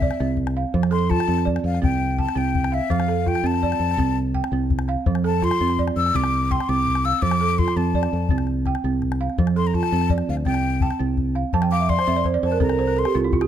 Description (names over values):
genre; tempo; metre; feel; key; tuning
west african traditional, West African string and xylophone music; 111 BPM (dotted quarters); 12/8; straight; F major; A4 = 440 Hz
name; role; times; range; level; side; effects
breathy mellow silver concert flute; melody; 0.0-13.2 s; E5 to E6; -25 LUFS; left 6 dB; none
balafon; arpeggios; 0.0-13.5 s; F3 to A5; -23 LUFS; right 6 dB; none
fingered electric bass; bass; 0.0-13.5 s; C2 to F2; -24 LUFS; left 1 dB; none
calabash; percussion; 0.0-13.5 s; none; -26 LUFS; left 4 dB; none
room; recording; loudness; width
moderate recital hall reverb, RT60 1.5 s; close, detailed microphones; -19 LUFS; side -10 dB against mid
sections
0.7-13.5 A section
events
balafon fill 11.5-13.5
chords
0.0 C; 0.7 F; 1.8 C5; 2.9 F; 4.0 C5; 5.1 F; 6.1 C5; 7.2 F; 8.3 C5; 9.4 F; 10.5 C5; 11.5 F5; 12.6 C7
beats
0.20 | 0.74 1.28 1.82 2.36 | 2.90 3.44 3.98 4.52 | 5.06 5.60 6.14 6.68 | 7.22 7.76 8.30 8.84 | 9.38 9.92 10.46 10.99 | 11.53 12.07 12.61 13.15